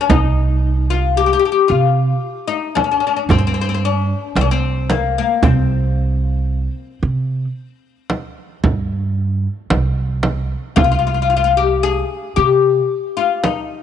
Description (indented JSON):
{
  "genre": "Arabic maqam ensemble",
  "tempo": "112 BPM (eighths)",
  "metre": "10/8",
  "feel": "straight",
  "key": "C maqam bayati",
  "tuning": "A4 = 441 Hz",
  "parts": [
    { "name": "oud", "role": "melody", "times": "0.0-13.8 s", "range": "Bb3 to Ab4", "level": "-17 LUFS", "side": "left 9 dB", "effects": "none" },
    { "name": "upright bass", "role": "bass", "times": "0.1-12.8 s", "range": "C2 to C3", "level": "-18 LUFS", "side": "right 2 dB", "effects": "none" },
    { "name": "frame drum", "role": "percussion", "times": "0.1-13.7 s", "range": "none", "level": "-18 LUFS", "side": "right 2 dB", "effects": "none" }
  ],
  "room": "light reverb, small room ambience",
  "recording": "nothing above 10.9 kHz",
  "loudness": "-15 LUFS",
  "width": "side -9 dB against mid",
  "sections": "0.0-13.8 A section",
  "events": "none",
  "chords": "none"
}